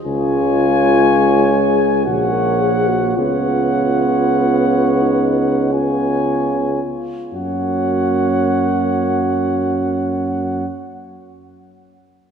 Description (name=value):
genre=classical, hymn-like piece for brass band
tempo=35-62 BPM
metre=3/4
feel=rubato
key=F# major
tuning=A4 = 440 Hz
part: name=mellow flugelhorn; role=second line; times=0.0-10.7 s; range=C#5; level=-25 LUFS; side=right 10 dB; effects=none
part: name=warm cornet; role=melody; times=0.1-10.7 s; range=F#5 to G#5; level=-22 LUFS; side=left 3 dB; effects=none
part: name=breathy trombone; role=accompaniment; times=0.1-10.7 s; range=G#3 to B3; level=-23 LUFS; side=right 4 dB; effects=none
part: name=warm euphonium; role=accompaniment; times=0.1-10.6 s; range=D#4 to A#4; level=-21 LUFS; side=left 2 dB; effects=none
part: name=warm tuba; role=bass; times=0.1-10.7 s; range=A#1 to F#2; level=-18 LUFS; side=equal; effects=none
room=wet church reverb, RT60 3.1 s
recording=minimal, uncompressed stereo recording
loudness=-14 LUFS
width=side -7 dB against mid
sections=0.0-7.3 A section; 7.3-11.9 B section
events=slowing down 0.0-7.3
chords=0.1 C#; 2.1 F#/A#; 3.2 C#7sus4; 5.7 C#7; 7.3 F#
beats=| 0.05 1.03 2.06 | 3.17 4.37 5.74 | 7.34 8.87 10.40